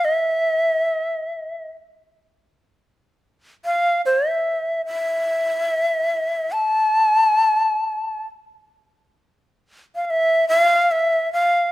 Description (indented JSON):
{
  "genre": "japanese traditional, Japanese chamber music",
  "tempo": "65-77 BPM",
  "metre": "4/4",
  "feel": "rubato",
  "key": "unclear",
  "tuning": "A4 = 438 Hz",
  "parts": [
    { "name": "bright shakuhachi", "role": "solo", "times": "0.0-11.7 s", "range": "E5 to A5", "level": "-17 LUFS", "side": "equal", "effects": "none" }
  ],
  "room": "light reverb",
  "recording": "close, detailed microphones",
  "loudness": "-17 LUFS",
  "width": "side -16 dB against mid",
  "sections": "0.0-10.0 A section; 10.0-11.7 B section",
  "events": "none",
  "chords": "none",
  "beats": "| 0.03 0.85 1.66 2.45 | 3.24 4.04 4.85 5.67 | 6.50 7.35 8.23 9.14 | 10.04 10.90"
}